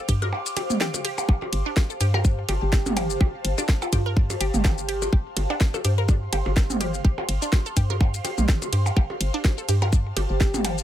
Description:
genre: minimal techno.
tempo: 125 BPM.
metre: 4/4.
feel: swing 56% on 16ths.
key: unclear.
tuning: A4 = 443 Hz.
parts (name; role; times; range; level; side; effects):
airy breathy pad; texture; 0.0-10.8 s; G4 to D6; -33 LUFS; equal; chorus, phaser, sidechain pumping.
resonant blip pluck; riff; 0.1-10.7 s; D4 to Bb4; -32 LUFS; equal; phaser, sidechain pumping, ping-pong delay.
hollow knocking FM bass; bass; 0.1-10.8 s; G1 to G2; -25 LUFS; equal; sidechain pumping.
electronic kick drum; drums; 0.1-10.5 s; none; -20 LUFS; equal; studio reverb.
garage drum kit; drums; 0.1-10.8 s; hi-hat, ride cymbal, shaker, snare drum; -29 LUFS; left 1 dB; studio reverb.
electronic percussion blips and toms; percussion; 0.2-10.8 s; none; -29 LUFS; right 2 dB; studio reverb.
airy dreamy lead; melody; 2.6-5.1, 10.3-10.8 s; F4 to G4; -32 LUFS; equal; chorus, ping-pong delay.
room: little or no reverb.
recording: none.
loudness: -21 LUFS.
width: side -12 dB against mid.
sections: 0.0-10.8 A section.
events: break 0.3-1.3.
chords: 0.0 G7(no3).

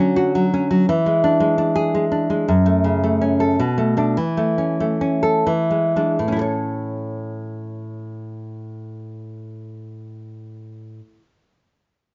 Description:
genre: romantic piece for solo classical guitar.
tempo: 80-116 BPM.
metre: 3/4.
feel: rubato.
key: A major.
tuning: A4 = 440 Hz.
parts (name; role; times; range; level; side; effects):
nylon-string guitar; solo; 0.0-11.2 s; F#2 to C#5; -21 LUFS; equal; none.
room: light reverb.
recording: nothing above 7.5 kHz.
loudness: -19 LUFS.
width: mono.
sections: 0.0-6.2 A section; 6.2-10.5 B section.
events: slowing down 1.7-6.2.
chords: 0.0 Dmaj7; 0.9 E7; 2.5 F#m; 3.6 Bm7; 4.2 A/E; 5.5 E7; 6.2 A.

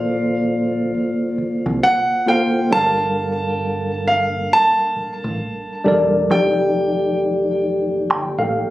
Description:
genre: R&B, neo-soul.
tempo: 67 BPM.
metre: 4/4.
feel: swing 62% on 16ths.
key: G minor.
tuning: A4 = 440 Hz.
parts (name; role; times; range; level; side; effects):
clear grand piano; melody; 0.0-7.2 s; F5 to A5; -19 LUFS; right 1 dB; plate reverb, tape echo.
mellow tine electric piano; accompaniment; 0.0-8.7 s; F3 to G5; -19 LUFS; equal; overdrive, fast stereo tremolo.
deep dub fingered electric bass; bass; 0.0-8.5 s; E1 to C2; -27 LUFS; equal; none.
room: moderate small room reverb, RT60 0.5 s.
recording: recorded on a phone in the room, club reverb, compression.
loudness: -16 LUFS.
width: side -16 dB against mid.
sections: 0.0-8.7 A section.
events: none.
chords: 0.0 Bbmaj7; 2.7 Gm9; 6.3 F13.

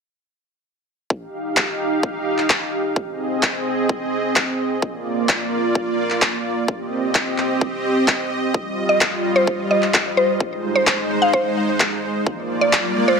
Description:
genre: EDM, festival progressive house.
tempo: 129 BPM.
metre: 4/4.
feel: straight.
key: Eb major.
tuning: A4 = 440 Hz.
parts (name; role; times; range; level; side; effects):
supersaw pad; sustained chords; 1.1-13.2 s; G3 to F5; -21 LUFS; right 1 dB; sidechain pumping, low-pass filter.
electronic kick drum; drums; 1.1-12.8 s; none; -23 LUFS; left 1 dB; high-pass filter on kick.
electronic handclaps; drums; 1.6-12.8 s; none; -20 LUFS; left 1 dB; none.
mallet-like synth pluck; melody; 8.9-13.2 s; C5 to F5; -19 LUFS; equal; chorus, ping-pong delay.
riser; sound effects; 12.5-13.2 s; none; -26 LUFS; left 2 dB; none.
room: moderate digital room reverb, RT60 1.2 s, digital ambience.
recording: none.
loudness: -18 LUFS.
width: side -5 dB against mid.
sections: 1.1-13.2 A section.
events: riser 12.5-13.2.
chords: 1.1 Ebadd9; 3.0 Ab; 4.8 Bb; 6.7 Cm; 8.5 Ebadd9; 10.4 Ab; 12.3 Bb.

